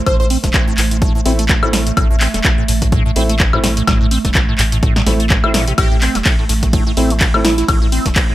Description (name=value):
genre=acid house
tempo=126 BPM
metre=4/4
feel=swing 56% on 16ths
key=A minor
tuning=A4 = 440 Hz
part: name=warbly tape-like pad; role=sustained chords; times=0.0-8.3 s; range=A3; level=-25 LUFS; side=right 6 dB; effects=chorus, built-in reverb, sidechain pumping
part: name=plucky unison lead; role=melody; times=0.1-0.3, 5.8-7.6 s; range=E4 to C5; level=-22 LUFS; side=right 1 dB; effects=dub echo
part: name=liquid acid bass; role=riff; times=0.1-8.3 s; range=A1 to C4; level=-22 LUFS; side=equal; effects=phaser, tube saturation, analog chorus, sidechain pumping, dub echo
part: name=warm sub bass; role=bass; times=0.1-8.1 s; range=E1 to A1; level=-18 LUFS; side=equal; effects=sidechain pumping
part: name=electronic kick drum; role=drums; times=0.1-8.3 s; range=none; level=-16 LUFS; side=equal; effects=none
part: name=punchy analog drum machine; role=drums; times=0.1-8.3 s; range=handclaps, hi-hat, ride cymbal, snare drum, woodblock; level=-18 LUFS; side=left 1 dB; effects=none
part: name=warm concert grand piano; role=stabs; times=1.3-7.5 s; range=A3 to E4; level=-24 LUFS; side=equal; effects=dub echo
room=light reverb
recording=none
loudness=-12 LUFS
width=side -15 dB against mid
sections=0.0-8.3 A section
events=none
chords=0.0 Am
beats=| 0.07 0.54 1.02 1.49 | 1.97 2.45 2.92 3.40 | 3.88 4.35 4.83 5.30 | 5.78 6.25 6.73 7.21 | 7.68 8.16